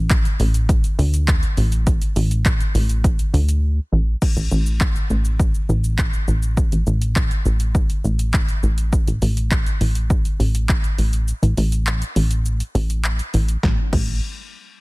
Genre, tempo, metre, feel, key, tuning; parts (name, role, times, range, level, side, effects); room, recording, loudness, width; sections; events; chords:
dance-pop; 102 BPM; 4/4; straight; A4 = 440 Hz
plucky analog bass; bass; 0.0-14.2 s; A1 to D2; -18 LUFS; equal; sidechain pumping
punchy analog drum machine; drums; 0.1-14.1 s; crash cymbal, handclaps, hi-hat, kick drum, shaker, snare drum; -20 LUFS; equal; overdrive
digital ambience; dense, heavily limited modern master; -17 LUFS; side -24 dB against mid
0.0-4.2 A section; 4.2-13.6 B section; 13.6-14.8 C section
drop 0.0-4.2; drums muted 3.6-4.2; kick muted 11.3-13.6